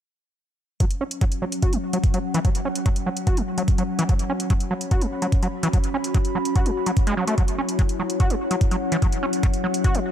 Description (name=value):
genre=psychedelic trance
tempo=146 BPM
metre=4/4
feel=straight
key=unclear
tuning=A4 = 440 Hz
part: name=overtone-sweeping drone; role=sustained chords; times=1.1-10.1 s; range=F#3 to E4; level=-29 LUFS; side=left 2 dB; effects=chorus, built-in reverb, phaser, sidechain pumping
part: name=overdriven acid bass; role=riff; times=0.8-10.0 s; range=E3 to F#4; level=-26 LUFS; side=equal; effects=distortion, auto-pan, sidechain pumping, dub echo
part: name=electronic hi-hat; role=drums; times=0.8-10.0 s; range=none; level=-33 LUFS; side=right 1 dB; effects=none
part: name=electronic kick drum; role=drums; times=0.8-9.9 s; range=none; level=-20 LUFS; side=equal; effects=none
part: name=warbly tape-like pad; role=texture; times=1.3-10.1 s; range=C#4 to B5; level=-31 LUFS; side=equal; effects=chorus, built-in reverb, sidechain pumping
room=little or no reverb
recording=none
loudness=-20 LUFS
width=side -10 dB against mid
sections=0.8-10.1 A section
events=filter sweep on acid bass 0.8-10.1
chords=0.8 F#5